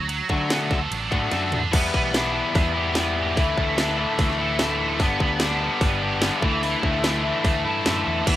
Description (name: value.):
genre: indie rock.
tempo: 147 BPM.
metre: 4/4.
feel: straight.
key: unclear.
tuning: A4 = 440 Hz.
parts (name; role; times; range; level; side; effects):
scooped high-gain guitar; riff; 0.0-8.4 s; E3 to A4; -25 LUFS; right 5 dB; distortion, ensemble chorus, analog delay.
fingered electric bass; bass; 0.0-8.4 s; G1 to D3; -29 LUFS; equal; none.
garage drum kit; drums; 0.1-8.4 s; crash cymbal, hi-hat, kick drum, ride cymbal, snare drum, toms; -24 LUFS; equal; none.
overdriven electric guitar; riff; 0.3-8.4 s; G2 to F#4; -24 LUFS; left 5 dB; none.
room: little or no reverb.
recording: rough home demo mix.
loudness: -20 LUFS.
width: side -13 dB against mid.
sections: 0.0-1.7 A section; 1.7-8.4 B section.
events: drum fill 1.3-1.7.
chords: 0.0 D6; 1.7 Em7; 3.4 Dsus2; 5.0 G; 6.4 Dsus2.